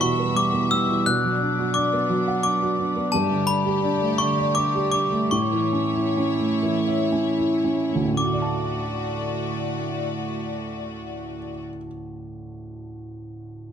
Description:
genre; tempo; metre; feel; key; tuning
children's music, lullaby; 54-88 BPM; 3/4; rubato; D major; A4 = 438 Hz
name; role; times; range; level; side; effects
glockenspiel with brass mallets; melody; 0.0-11.6 s; A5 to F#6; -24 LUFS; left 1 dB; none
felt-muted upright piano; accompaniment; 0.0-13.7 s; D2 to A5; -24 LUFS; right 1 dB; none
rich studio string section; sustained chords; 0.0-11.6 s; G3 to E5; -30 LUFS; left 3 dB; none
room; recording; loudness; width
moderate recital hall reverb, RT60 1.5 s; close, detailed microphones; -20 LUFS; side -8 dB against mid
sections
0.0-8.2 A section; 8.2-13.7 B section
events
slowing down 3.1-8.2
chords
0.0 Emadd9; 1.1 Bm; 3.1 Gsus2; 5.3 A; 8.2 D

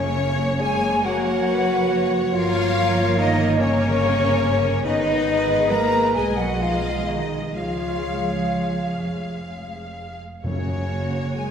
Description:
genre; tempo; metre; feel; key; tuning
classical, slow romantic movement for symphony orchestra; 40-49 BPM (dotted quarters); 6/8; rubato; F# major; A4 = 439 Hz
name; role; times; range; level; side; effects
rich symphonic violin section; melody; 0.0-11.5 s; A#4 to E#5; -32 LUFS; left 1 dB; none
hollow small flute group; second line; 0.0-11.5 s; C#5 to A#5; -28 LUFS; equal; none
rich symphonic violin section; second line; 0.0-11.5 s; C#5 to A#5; -29 LUFS; left 2 dB; none
rich symphonic viola section; accompaniment; 0.0-11.5 s; G#3 to C#5; -28 LUFS; equal; none
warm French horn section; sustained chords; 0.0-11.5 s; C#4 to A#4; -24 LUFS; left 2 dB; none
rich symphonic cello section; bass; 0.0-11.5 s; C#3 to A#3; -27 LUFS; right 2 dB; none
warm studio double bass section; bass; 0.0-11.5 s; E#1 to C#2; -29 LUFS; right 2 dB; none
timpani; percussion; 0.0-1.0, 10.4-11.5 s; F#2; -30 LUFS; equal; none
warm clarinet; second line; 1.0-9.7 s; A#4 to C#5; -32 LUFS; equal; none
room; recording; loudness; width
wet concert hall reverb, RT60 2.3 s; recorded in a church or concert hall; -19 LUFS; side -7 dB against mid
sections
0.0-11.5 A section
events
none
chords
0.0 F#; 2.3 D#7/G; 4.8 G#m; 6.1 G#m/B; 7.6 C#; 10.4 F#

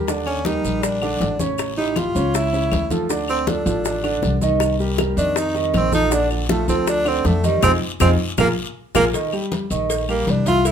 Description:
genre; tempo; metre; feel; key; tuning
Afro-Cuban jazz; 159 BPM; 4/4; straight; Bb major; A4 = 440 Hz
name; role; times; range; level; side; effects
warm baby grand piano; accompaniment; 0.0-10.7 s; Db3 to G5; -23 LUFS; right 2 dB; none
upright bass; bass; 0.0-10.7 s; A1 to F2; -23 LUFS; left 1 dB; none
bongos and cowbell; percussion; 0.1-10.7 s; none; -28 LUFS; left 6 dB; none
congas; percussion; 0.1-10.7 s; none; -28 LUFS; left 2 dB; none
guiro; percussion; 0.1-10.7 s; none; -36 LUFS; left 5 dB; none
maracas; percussion; 0.1-10.7 s; none; -33 LUFS; right 6 dB; none
clear tenor saxophone; melody; 0.3-10.7 s; F3 to F4; -21 LUFS; right 2 dB; none
claves; percussion; 0.3-10.7 s; none; -30 LUFS; left 4 dB; none
room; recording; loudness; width
moderate club reverb, RT60 0.8 s; minimal, uncompressed stereo recording; -17 LUFS; side -8 dB against mid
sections
0.0-9.1 A section; 9.1-10.7 A section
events
tenor saxophone solo 0.0-10.7; drum fill 7.6-9.1; band accent 7.6-9.1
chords
0.1 Ebmaj7; 1.6 A7; 3.1 Dm7; 4.6 Cm7; 5.4 F7; 6.1 Bbmaj7; 7.6 Fm7; 8.4 Bb5; 9.1 Eb

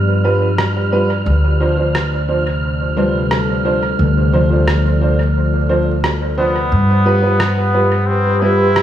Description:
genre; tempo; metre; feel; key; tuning
ambient dub; 88 BPM; 4/4; straight; D dorian; A4 = 442 Hz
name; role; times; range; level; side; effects
warbly tape-like pad; sustained chords; 0.0-8.8 s; C3 to D5; -24 LUFS; equal; chorus, built-in reverb, phaser
upright bass; bass; 0.0-8.8 s; D2 to G2; -16 LUFS; equal; none
wind-like tuned noise texture; texture; 0.0-8.8 s; F6; -27 LUFS; right 6 dB; built-in reverb
warm upright piano; stabs; 0.2-8.6 s; F3 to C5; -19 LUFS; right 2 dB; vintage 12-bit sampler grit, low-pass filter, dub echo
electronic rim click; drums; 0.6-8.8 s; none; -24 LUFS; right 1 dB; studio reverb, dub echo
handpan; arpeggios; 3.0-7.5 s; F3 to B4; -24 LUFS; left 4 dB; dub echo
trombone with straight mute; melody; 6.4-8.8 s; B3 to E4; -18 LUFS; left 1 dB; dub echo
room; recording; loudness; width
moderate echo chamber reverb, RT60 2.1 s; vinyl crackle, small room reverb; -13 LUFS; side -11 dB against mid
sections
0.0-8.8 A section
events
filter sweep on ambient pad 0.0-8.8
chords
0.0 G7; 1.3 Dm7; 6.7 G7

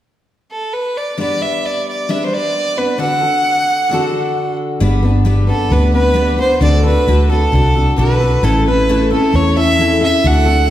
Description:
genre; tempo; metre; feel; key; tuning
honky-tonk and classic country; 133 BPM; 4/4; straight; G major; A4 = 440 Hz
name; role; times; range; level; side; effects
clear fiddle; melody; 0.5-10.7 s; A4 to F#5; -16 LUFS; right 1 dB; none
picked steel-string acoustic guitar; accompaniment; 1.2-10.7 s; A2 to B4; -17 LUFS; left 2 dB; none
vintage muted fingered electric bass; bass; 4.8-10.7 s; G1 to E2; -14 LUFS; equal; none
room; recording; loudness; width
wet recital hall reverb, RT60 1.6 s; heard from further back in the room; -12 LUFS; side -12 dB against mid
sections
0.0-1.2 A section; 1.2-4.8 B section; 4.8-10.7 C section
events
none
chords
0.0 N.C.; 1.2 G; 3.0 D; 4.8 G; 6.6 D; 8.4 A

